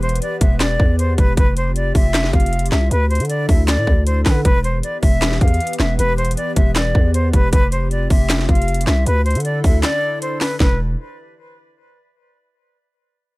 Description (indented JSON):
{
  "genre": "hip hop, trap",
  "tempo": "156 BPM",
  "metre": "4/4",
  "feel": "half-time",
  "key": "E phrygian",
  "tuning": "A4 = 440 Hz",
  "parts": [
    { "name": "breathy silver concert flute", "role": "melody", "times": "0.0-10.8 s", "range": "B4 to F5", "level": "-22 LUFS", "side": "left 1 dB", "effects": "digital delay" },
    { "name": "hollow soft pad", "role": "sustained chords", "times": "0.0-10.8 s", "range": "D3 to B4", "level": "-28 LUFS", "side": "equal", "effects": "chorus" },
    { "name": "growling 808-style bass", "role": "bass", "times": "0.0-11.0 s", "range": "E1 to D3", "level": "-18 LUFS", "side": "equal", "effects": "none" },
    { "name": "trap drum kit", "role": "drums", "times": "0.0-10.7 s", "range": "handclaps, hi-hat, kick drum, snare drum", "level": "-16 LUFS", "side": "equal", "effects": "none" }
  ],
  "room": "little or no reverb",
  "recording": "none",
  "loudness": "-14 LUFS",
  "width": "side -21 dB against mid",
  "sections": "0.0-10.6 A section; 10.6-12.1 B section",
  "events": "break 9.8-10.6",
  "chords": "0.0 Em; 1.4 Fsus2; 2.9 Dsus2; 4.5 Em; 7.5 Fsus2; 9.1 Dsus2; 10.6 Em"
}